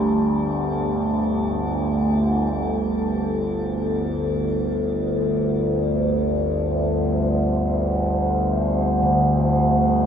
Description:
dark ambient drone; free time; A4 = 440 Hz
deep dark ambient pad; sustained chords; 0.0-10.1 s; A3 to D5; -26 LUFS; right 1 dB; chorus, built-in reverb, shimmer reverb
overtone-sweeping drone; drone; 0.0-10.1 s; G1 to D2; -20 LUFS; equal; chorus, built-in reverb
bronze singing bowl; arpeggios; 9.0-10.1 s; D3; -22 LUFS; left 3 dB
wet huge ambient reverb, RT60 7.3 s; -19 LUFS; side -8 dB against mid
0.0-2.5 A section; 2.5-10.1 B section
fade-in on ambient pad 2.5-10.1
0.0 Gsus2

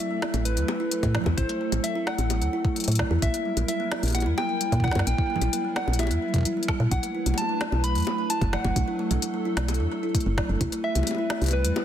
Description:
IDM; 130 BPM; 4/4; straight; A dorian; A4 = 444 Hz
soft struck synth lead; melody; 0.0-11.8 s; B4 to B5; -31 LUFS; left 1 dB; chorus, digital delay
hollow soft pad; sustained chords; 0.0-11.8 s; F#3 to B4; -34 LUFS; equal; ensemble chorus
kalimba; arpeggios; 0.0-11.8 s; E3 to E4; -30 LUFS; right 1 dB; digital delay
organic electronic drum kit; drums; 0.2-11.8 s; bongos, congas, hi-hat, snare drum; -31 LUFS; left 2 dB; overdrive
woody FM bass; bass; 0.3-11.7 s; F#1 to A#2; -25 LUFS; equal
electronic kick drum; drums; 1.0-10.7 s; -27 LUFS; equal; overdrive
light reverb; dense, heavily limited modern master; -23 LUFS; side -10 dB against mid
0.0-11.8 A section
0.0 Am69; 3.2 F#7b9/A#; 6.9 Bm7; 10.6 Cmaj7

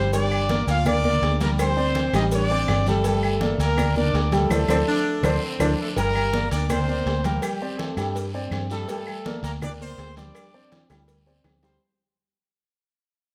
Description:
latin, salsa; 164 BPM; 4/4; straight; G minor; A4 = 442 Hz
brilliant horn section; melody; 0.0-11.8 s; G3 to F5; -29 LUFS; equal
warm baby grand piano; accompaniment; 0.0-11.8 s; G3 to G5; -30 LUFS; equal
vintage muted fingered electric bass; bass; 0.0-11.8 s; G1 to G2; -27 LUFS; equal
agogo bells and timbales; percussion; 0.1-11.7 s; -36 LUFS; equal
congas; percussion; 0.1-11.6 s; -34 LUFS; equal
cowbell and bongos; percussion; 0.1-11.7 s; -37 LUFS; equal
guiro; percussion; 0.1-11.8 s; -41 LUFS; equal
maracas; percussion; 0.1-11.8 s; -46 LUFS; equal
claves; percussion; 0.3-11.6 s; -40 LUFS; equal
mellow saxophone section; second line; 4.7-6.0 s; C4 to D4; -30 LUFS; equal
moderate large studio reverb, RT60 1.5 s; -23 LUFS; mono
0.0-6.0 A section; 6.0-11.8 B section
band accent 4.5-6.0; drum fill 4.9-6.0, 10.7-11.8; fade-out 6.0-11.8
0.1 Gm7; 1.6 D7sus4; 3.0 Gm; 4.5 D5; 6.0 Gm; 7.4 D7sus4; 8.9 Gm; 10.3 D7sus4

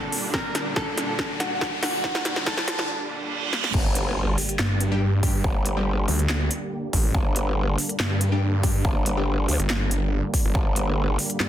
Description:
heavy wobble dubstep; 141 BPM; 4/4; half-time; G harmonic minor; A4 = 439 Hz
clean electric guitar; melody; 0.0-2.9 s; F#4 to Bb4; -30 LUFS; right 1 dB; spring reverb, digital delay
supersaw chords; sustained chords; 0.0-11.5 s; Bb2 to G4; -31 LUFS; right 1 dB; sidechain pumping, low-pass filter
riser, reverse cymbal and impact; sound effects; 0.0-5.4 s; -31 LUFS; right 1 dB
big-room dance drum kit; drums; 0.1-11.5 s; crash cymbal, handclaps, hi-hat, snare drum; -27 LUFS; equal; soft clipping on snare
electronic kick drum; drums; 0.3-10.6 s; -25 LUFS; equal
growl bass; bass; 3.7-11.2 s; G1 to D2; -24 LUFS; equal; chorus, overdrive
snarling distorted saw bass; bass; 4.6-11.5 s; G1 to G2; -23 LUFS; equal; distortion, overdrive
orchestra-hit-like synth stab; stabs; 4.9-9.3 s; G3 to G4; -31 LUFS; left 1 dB; built-in reverb, digital delay
light reverb, digital ambience; dense, heavily limited modern master, high-pass filter; -21 LUFS; side -11 dB against mid
0.0-3.7 A section; 3.7-11.5 B section
build-up 0.0-3.7; drum fill 0.0-2.9, 3.5; riser 0.0-2.9; reverse cymbal 2.9-3.7; drop 3.7-11.5; impact 3.7-5.4
0.0 Gm

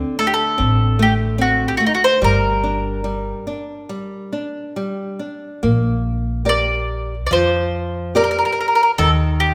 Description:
fado-style ballad; 72 BPM; 4/4; rubato; G harmonic minor, Bb major from 5.6 s; A4 = 438 Hz
nylon-string guitar; accompaniment; 0.0-9.5 s; D3 to D5; -25 LUFS; equal
upright bass; bass; 0.0-9.5 s; G1 to F2; -23 LUFS; equal
bowl-back mandolin; melody; 0.2-9.5 s; Eb4 to D5; -20 LUFS; equal
moderate scoring stage reverb, RT60 1.7 s; -18 LUFS; mono
0.0-5.6 A section; 5.6-9.5 B section
break 3.9-5.6
0.0 D5; 2.2 Gm; 5.6 Bb6; 9.0 Eb

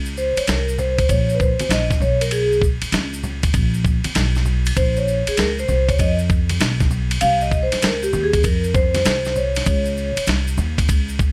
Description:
hip hop, jazz-hop; 98 BPM; 4/4; swing 65% on 16ths; A4 = 439 Hz
upright bass; bass; 0.0-11.3 s; Bb1 to F2; -24 LUFS; equal
tube shaker and congas; percussion; 0.1-11.3 s; -35 LUFS; equal
vibraphone with medium mallets; accompaniment; 0.2-10.2 s; G4 to F5; -23 LUFS; equal
dusty soul sampler-style drum kit; drums; 0.4-11.3 s; hi-hat, kick drum, ride cymbal, snare drum; -23 LUFS; equal
light reverb; -19 LUFS; mono
0.0-11.3 A section
vibraphone solo 0.0-11.3
0.0 Bbmadd9; 2.0 Bsus2; 4.2 N.C.; 4.8 Bbmadd9; 7.2 Cmadd11; 9.7 Bbmadd9 (rootless)

